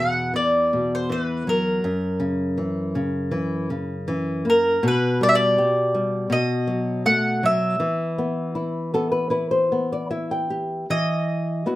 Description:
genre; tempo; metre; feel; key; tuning
fado-style ballad; 80 BPM; 4/4; rubato; E minor; A4 = 439 Hz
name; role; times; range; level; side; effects
mandolin; melody; 0.0-11.8 s; A#4 to F#5; -21 LUFS; equal; none
nylon-string guitar; accompaniment; 0.0-11.8 s; E2 to G5; -23 LUFS; left 1 dB; none
room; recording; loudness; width
moderate studio ambience, RT60 0.5 s; none; -20 LUFS; side -16 dB against mid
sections
0.0-10.9 A section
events
nylon-string guitar fill 8.6-10.9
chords
0.0 Esus2; 1.8 F#7; 4.8 G/B; 6.3 B7; 7.8 Em; 10.9 N.C.

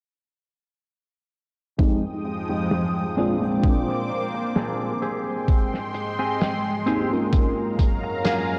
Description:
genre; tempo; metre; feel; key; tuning
vaporwave; 65 BPM; 4/4; swing 53% on 16ths; F dorian; A4 = 440 Hz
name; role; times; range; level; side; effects
mellow FM electric piano; accompaniment; 1.8-8.6 s; Ab3 to G5; -29 LUFS; equal; phaser, ensemble chorus, analog delay
lush unison pad; sustained chords; 2.1-8.6 s; F3 to Eb6; -30 LUFS; equal; chorus, phaser
semi-hollow electric guitar; riff; 1.8-8.6 s; F2 to Ab4; -32 LUFS; equal; subtle chorus, low-pass filter, analog delay
damped 70s drum kit; drums; 1.8-8.4 s; hi-hat, snare drum; -33 LUFS; equal; low-pass filter on hats, low-pass filter on snare, low-pass filter on room
electronic kick drum; drums; 1.8-8.0 s; none; -22 LUFS; equal; overdrive
room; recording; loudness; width
wet cathedral reverb, RT60 4.3 s; dreamy mix soaked in reverb; -24 LUFS; mono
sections
1.8-8.6 A section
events
filter sweep on drum 1.8-8.6; filter sweep on clean electric guitar 1.8-8.6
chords
1.8 Fm9; 3.2 Bb9; 5.0 Abmaj7; 7.3 Gbmaj9

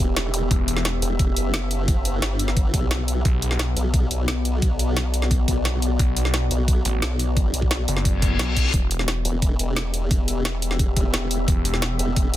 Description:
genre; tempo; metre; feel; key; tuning
dark technical drum and bass; 175 BPM; 4/4; straight; E minor; A4 = 442 Hz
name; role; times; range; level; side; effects
deep dark ambient pad; sustained chords; 0.0-12.4 s; B3 to E5; -29 LUFS; left 3 dB; chorus, built-in reverb, sidechain pumping
formant-sweep wobble bass; bass; 0.0-12.4 s; E1 to B1; -24 LUFS; equal; chorus
drum and bass drum kit; drums; 0.2-12.4 s; hi-hat, snare drum; -26 LUFS; equal; overdrive
zap and reverse cymbal; sound effects; 0.3-0.4, 8.2-8.7 s; none; -28 LUFS; left 4 dB; none
snarling distorted saw bass; bass; 0.5-1.0, 3.3-3.8, 6.0-9.2, 11.5-12.0 s; E1 to B1; -24 LUFS; equal; distortion, overdrive
electronic kick drum; drums; 0.5-12.2 s; none; -21 LUFS; equal; overdrive
room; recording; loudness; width
little or no reverb; dense, heavily limited modern master; -19 LUFS; side -14 dB against mid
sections
0.0-12.4 A section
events
reverse cymbal 8.2-8.7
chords
0.0 Em; 3.3 Bm; 8.7 Em

